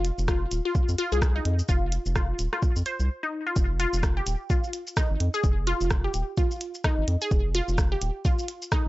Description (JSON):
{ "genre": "minimal techno", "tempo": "128 BPM", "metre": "4/4", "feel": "swing 59% on 16ths", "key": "F minor", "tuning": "A4 = 441 Hz", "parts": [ { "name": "round analog bass", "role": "bass", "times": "0.0-8.9 s", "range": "Eb1 to F2", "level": "-26 LUFS", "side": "equal", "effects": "sidechain pumping" }, { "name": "minimal click drum kit", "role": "drums", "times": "0.0-8.8 s", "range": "hi-hat, rim click, shaker", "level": "-33 LUFS", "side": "equal", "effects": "none" }, { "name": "resonant blip pluck", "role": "riff", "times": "0.3-8.8 s", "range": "Eb4 to C5", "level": "-30 LUFS", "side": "left 1 dB", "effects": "phaser, cassette tape, sidechain pumping, analog delay" }, { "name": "electronic kick drum", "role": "drums", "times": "0.3-8.8 s", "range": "none", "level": "-24 LUFS", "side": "equal", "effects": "none" } ], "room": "little or no reverb", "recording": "dry, gritty hardware recording, nothing above 7.8 kHz", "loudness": "-23 LUFS", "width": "side -18 dB against mid", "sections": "0.0-3.6 A section; 3.6-8.9 B section", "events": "break 3.1-3.6; drop 3.6-8.9", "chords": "0.0 F5; 3.6 N.C." }